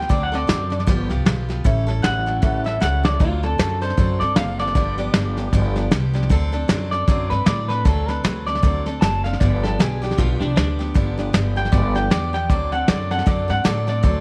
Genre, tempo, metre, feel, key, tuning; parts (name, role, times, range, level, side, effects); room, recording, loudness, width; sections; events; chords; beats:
rockabilly; 155 BPM; 4/4; swing 59% on 8ths; D mixolydian; A4 = 440 Hz
electric guitar through a small old amp; melody; 0.0-14.2 s; D4 to A5; -27 LUFS; equal; tape echo
picked steel-string acoustic guitar; accompaniment; 0.0-14.2 s; G2 to A4; -30 LUFS; equal
upright bass; bass; 0.0-14.2 s; F#1 to A2; -25 LUFS; equal
soft brush drum kit; drums; 0.0-14.1 s; hi-hat, kick drum, snare drum; -23 LUFS; equal
small room ambience; -20 LUFS; mono
0.0-3.2 A section; 3.2-14.2 B section
drum fill 2.8-3.2; clean electric guitar solo 3.2-14.2
0.1 D7; 0.9 G7; 1.7 A7; 3.2 D7; 4.8 G7; 6.3 D7; 9.4 G7; 12.5 D7
| 0.10 0.49 0.88 1.26 | 1.65 2.04 2.43 2.82 | 3.20 3.59 3.98 4.37 | 4.76 5.14 5.53 5.92 | 6.31 6.69 7.08 7.47 | 7.86 8.24 8.63 9.02 | 9.40 9.79 10.18 10.56 | 10.95 11.34 11.72 12.11 | 12.50 12.88 13.27 13.66 | 14.04